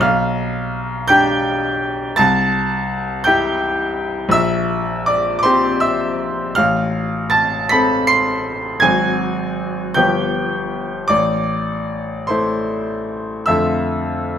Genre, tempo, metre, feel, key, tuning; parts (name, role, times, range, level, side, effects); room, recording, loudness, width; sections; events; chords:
classical, romantic nocturne for solo piano; 48-58 BPM (dotted quarters); 12/8; rubato; C major; A4 = 439 Hz
bright baby grand piano; solo; 0.0-14.4 s; G1 to C7; -15 LUFS; equal
moderate recital hall reverb, RT60 1.6 s; -15 LUFS; side -9 dB against mid
0.0-14.4 A section
0.0 G/B; 2.2 C; 4.3 C7/Bb; 6.6 F/A; 8.8 Ab7; 10.0 G7; 11.1 Am; 13.5 Dm/F